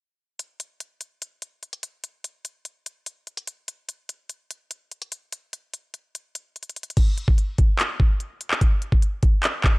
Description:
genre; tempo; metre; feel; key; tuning
hip hop; 146 BPM; 4/4; half-time; none; none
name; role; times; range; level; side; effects
trap drum kit; drums; 0.4-9.7 s; crash cymbal, handclaps, hi-hat, kick drum; -20 LUFS; equal; none
room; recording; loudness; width
little or no reverb; dry, gritty hardware recording; -20 LUFS; side -25 dB against mid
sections
0.4-7.0 A section; 7.0-9.8 B section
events
none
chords
none

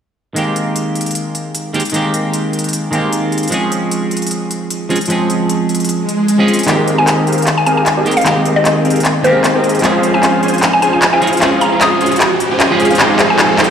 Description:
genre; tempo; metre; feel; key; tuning
future bass; 152 BPM; 4/4; swing 55% on 16ths, half-time; unclear; A4 = 441 Hz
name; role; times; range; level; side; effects
semi-hollow electric guitar; accompaniment; 0.3-13.7 s; Eb3 to Ab4; -16 LUFS; right 1 dB; phaser, low-pass filter, tape echo
pop drum kit; drums; 0.4-13.7 s; handclaps, hi-hat; -17 LUFS; left 1 dB; small room reverb
swell and riser; sound effects; 6.0-13.7 s; none; -20 LUFS; right 1 dB; none
supersaw chords; riff; 6.7-13.7 s; C4 to Ab5; -15 LUFS; left 1 dB; low-pass filter
mallet-like synth pluck; melody; 7.0-13.5 s; C5 to Eb6; -16 LUFS; left 1 dB; chorus, digital delay
room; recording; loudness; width
moderate huge ambient reverb, RT60 4.2 s; played on a big sound system in a bare room, stone room reverb; -11 LUFS; side -8 dB against mid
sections
0.4-6.7 A section; 6.7-13.7 B section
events
swell 6.0-6.7; drum fill 6.5, 6.7-13.7; build-up 6.7-13.7; riser 6.7-13.7; filter sweep on supersaw synth 6.7-13.7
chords
0.4 Abmaj9; 3.5 Dbmaj7; 6.7 Abmaj9; 9.8 Dbmaj7; 13.0 Fm9

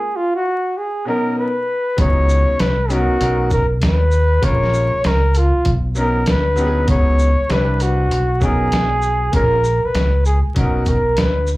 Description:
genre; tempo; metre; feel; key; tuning
hip hop, jazz-hop; 98 BPM; 4/4; swing 66% on 16ths; unclear; A4 = 439 Hz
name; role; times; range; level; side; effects
breathy flugelhorn; melody; 0.0-11.5 s; E#4 to C#5; -19 LUFS; equal; slapback echo
bright upright piano; accompaniment; 1.1-11.0 s; B2 to B4; -23 LUFS; left 1 dB; slapback echo
deep dub fingered electric bass; bass; 2.0-11.6 s; A#1 to D#2; -17 LUFS; equal; none
dusty soul sampler-style drum kit; drums; 2.0-11.6 s; hi-hat, kick drum, shaker, snare drum; -21 LUFS; equal; overdrive
room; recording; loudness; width
light reverb; live gig heard through the venue's PA, club ambience, vinyl crackle; -14 LUFS; side -19 dB against mid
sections
0.0-2.0 A section; 2.0-11.6 B section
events
break 0.0-2.0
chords
0.0 A#7(no3) (rootless); 0.8 Bmaj13; 2.0 C#7sus4; 2.6 Bmaj9; 4.4 A#m7; 5.7 G#m11/B; 6.9 C#7sus4; 7.5 Cmaj9; 8.1 Bmaj9; 9.3 A#m7; 10.6 Bmaj9

